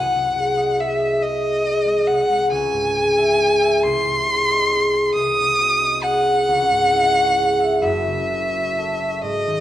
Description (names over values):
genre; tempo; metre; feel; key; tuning
classical, romantic duo for violin and harp; 41-48 BPM (dotted quarters); 6/8; rubato; unclear; A4 = 440 Hz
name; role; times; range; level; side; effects
rich violin; melody; 0.0-9.6 s; D#5 to D#6; -18 LUFS; equal; none
concert harp; accompaniment; 0.0-9.6 s; F#1 to G#5; -20 LUFS; equal; none
room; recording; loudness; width
wet recital hall reverb, RT60 1.6 s; dark, warm production; -16 LUFS; side -12 dB against mid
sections
0.0-9.6 A section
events
none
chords
0.0 G#7/B#; 2.5 C#m; 3.8 G#/B#; 5.1 G#7/B#; 6.5 C#m; 7.8 F#m7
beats
1.22 | 2.52 3.83 | 5.14 6.48 | 7.83 9.22